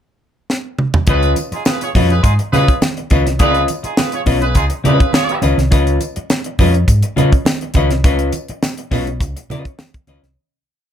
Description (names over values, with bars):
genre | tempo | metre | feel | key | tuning
funk | 103 BPM | 4/4 | straight | Db mixolydian | A4 = 440 Hz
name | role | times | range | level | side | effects
tight funk drum kit | drums | 0.5-10.4 s | hi-hat, kick drum, snare drum, toms | -16 LUFS | equal | none
bright horn section | second line | 1.1-5.4 s | Eb4 to Db5 | -20 LUFS | right 2 dB | none
semi-hollow electric guitar | accompaniment | 1.1-10.3 s | Db4 to Eb5 | -19 LUFS | left 3 dB | none
hollow-body short-scale fingered electric bass | bass | 1.1-10.3 s | Cb2 to Db3 | -16 LUFS | equal | none
congas | percussion | 1.1-10.4 s | none | -24 LUFS | right 7 dB | none
tambourine | percussion | 1.4-10.2 s | none | -36 LUFS | left 4 dB | none
room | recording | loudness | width
light reverb | none | -13 LUFS | side -9 dB against mid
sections
0.0-1.1 pickup bar; 1.1-10.4 groove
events
drum fill 0.5-1.1; fade-out 8.0-10.4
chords
0.0 N.C.; 1.1 Db9